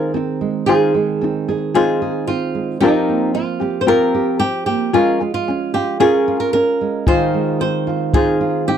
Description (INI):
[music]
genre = acoustic pop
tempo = 112 BPM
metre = 4/4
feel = straight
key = F minor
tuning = A4 = 440 Hz
[part]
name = flamenco guitar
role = melody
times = 0.0-8.8 s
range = Eb4 to C5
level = -19 LUFS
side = right 3 dB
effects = none
[part]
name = tenor ukulele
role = accompaniment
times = 0.0-8.8 s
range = C4 to C5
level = -18 LUFS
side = left 7 dB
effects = none
[part]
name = nylon-string guitar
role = arpeggios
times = 0.0-8.8 s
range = Eb3 to Ab4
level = -21 LUFS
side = right 7 dB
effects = slapback echo
[part]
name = kick drum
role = drums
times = 7.1-8.3 s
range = none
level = -17 LUFS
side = equal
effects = none
[sound]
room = light reverb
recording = dry, close 1970s-style studio recording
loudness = -15 LUFS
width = side -8 dB against mid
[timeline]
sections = 0.0-8.8 A section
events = none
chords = 0.0 Fm7; 2.8 C7sus4; 4.9 Bbm7; 7.1 Fm7